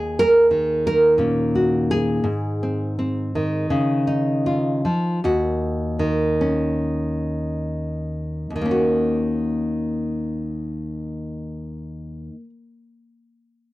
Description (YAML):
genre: folk, solo fingerstyle acoustic guitar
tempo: 65-87 BPM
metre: 4/4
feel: rubato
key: Eb minor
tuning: A4 = 440 Hz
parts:
  - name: nylon-string guitar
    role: solo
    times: 0.0-12.5 s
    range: Eb2 to Bb4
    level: -20 LUFS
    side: equal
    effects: none
room: light reverb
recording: dry, close 1970s-style studio recording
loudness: -19 LUFS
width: side -17 dB against mid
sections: 0.0-5.2 A section; 5.2-8.5 B section; 8.5-12.1 C section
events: slowing down 2.3-8.5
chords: 0.0 Ebm7; 2.3 Ab; 3.7 Dbadd9; 5.2 Ebm7